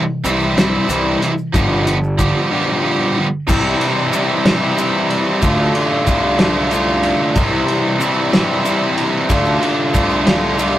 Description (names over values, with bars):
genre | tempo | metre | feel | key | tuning
indie rock | 62 BPM (dotted quarters) | 6/8 | straight | C major | A4 = 437 Hz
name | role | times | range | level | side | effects
cranked stack guitar | riff | 0.0-10.8 s | C3 to G4 | -17 LUFS | right 2 dB | overdrive
overdriven electric guitar | riff | 0.0-10.8 s | G2 to F4 | -20 LUFS | left 2 dB | none
fuzz picked electric bass | bass | 0.2-10.8 s | G1 to D2 | -22 LUFS | equal | overdrive
tube shaker | percussion | 0.2-10.7 s | none | -34 LUFS | left 6 dB | none
cloth-damped thuddy drum kit | drums | 0.3-10.7 s | crash cymbal, hi-hat, kick drum, ride cymbal, snare drum | -19 LUFS | equal | none
room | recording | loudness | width
moderate booth ambience, RT60 0.2 s | rough rehearsal-room recording | -13 LUFS | side -13 dB against mid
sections
0.0-3.5 A section; 3.5-10.8 B section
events
none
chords
0.0 C; 1.5 G7; 3.5 C; 5.4 Dm7; 7.4 C; 9.3 Dm7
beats
0.57 | 1.54 2.51 | 3.48 4.45 | 5.42 6.38 | 7.35 8.32 | 9.29 10.26